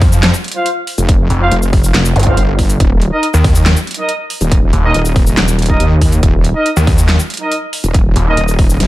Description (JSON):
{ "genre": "heavy wobble dubstep", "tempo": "140 BPM", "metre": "4/4", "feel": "half-time", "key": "unclear", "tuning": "A4 = 440 Hz", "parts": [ { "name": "snarling distorted saw bass", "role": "bass", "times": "0.0-8.4 s", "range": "Eb1 to F2", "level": "-11 LUFS", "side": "equal", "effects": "distortion, overdrive" }, { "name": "dubstep drum kit", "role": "drums", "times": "0.0-8.9 s", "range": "handclaps, hi-hat, shaker, snare drum", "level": "-18 LUFS", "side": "equal", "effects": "none" }, { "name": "electronic kick drum", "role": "drums", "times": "0.0-8.7 s", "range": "none", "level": "-13 LUFS", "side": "equal", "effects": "none" }, { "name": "mellow brass ensemble", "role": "stabs", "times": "0.6-8.4 s", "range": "Eb4 to F5", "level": "-18 LUFS", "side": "equal", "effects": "digital delay" }, { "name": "wobble bass", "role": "bass", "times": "1.0-8.9 s", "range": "Eb1 to Eb2", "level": "-13 LUFS", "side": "equal", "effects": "chorus, overdrive" }, { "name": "zap", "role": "sound effects", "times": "2.2-2.3 s", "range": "none", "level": "-21 LUFS", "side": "equal", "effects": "none" } ], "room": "little or no reverb", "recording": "dark, warm production", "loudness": "-10 LUFS", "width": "side -16 dB against mid", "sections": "0.0-8.9 A section", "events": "none", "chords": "0.0 F5; 2.8 Eb5" }